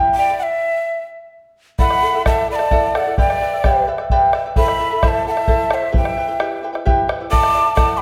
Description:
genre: andean folk, Andean ensemble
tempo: 87 BPM (dotted quarters)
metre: 6/8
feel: straight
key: unclear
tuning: A4 = 444 Hz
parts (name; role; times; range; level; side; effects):
- charango; accompaniment; 0.0-8.0 s; E4 to B5; -22 LUFS; equal; none
- breathy mellow quena; melody; 0.1-8.0 s; E5 to D6; -21 LUFS; equal; none
- breathy mellow quena; second line; 0.2-8.0 s; C5 to A5; -25 LUFS; equal; none
- bombo; percussion; 1.8-7.9 s; none; -22 LUFS; equal; none
room: wet recital hall reverb, RT60 1.3 s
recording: none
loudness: -17 LUFS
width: mono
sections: 0.0-1.8 A section; 1.8-8.0 B section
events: stop 0.4-1.8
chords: 0.4 N.C.; 1.8 D/E; 3.2 G; 4.6 Am/E; 5.9 Em; 7.3 D/E

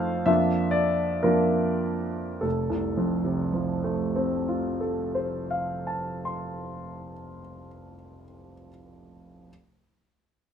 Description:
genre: classical, romantic character piece for solo piano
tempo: 48-71 BPM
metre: 2/4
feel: rubato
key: F major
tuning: A4 = 441 Hz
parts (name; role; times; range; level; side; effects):
- warm grand piano; solo; 0.0-9.5 s; F1 to C6; -25 LUFS; equal; none
room: light reverb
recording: none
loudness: -24 LUFS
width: side -8 dB against mid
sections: 0.0-2.4 A section; 2.4-7.2 B section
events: slowing down 0.0-2.4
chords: 0.3 Bb/F; 2.4 F

